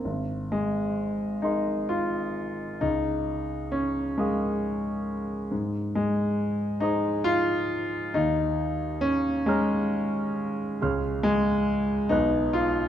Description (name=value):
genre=classical, impressionist solo piano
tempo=45 BPM (dotted quarters)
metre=6/8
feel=rubato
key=Ab major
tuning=A4 = 439 Hz
part: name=warm grand piano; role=solo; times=0.0-12.9 s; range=Ab1 to F#6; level=-24 LUFS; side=equal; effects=none
room=wet recital hall reverb, RT60 1.8 s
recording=dark, warm production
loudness=-24 LUFS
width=side -10 dB against mid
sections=0.0-12.9 A section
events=none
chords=0.0 Abadd9; 2.8 Db69; 5.5 Abadd9; 8.1 Eb11; 10.8 Dbmaj7; 12.1 Bmaj7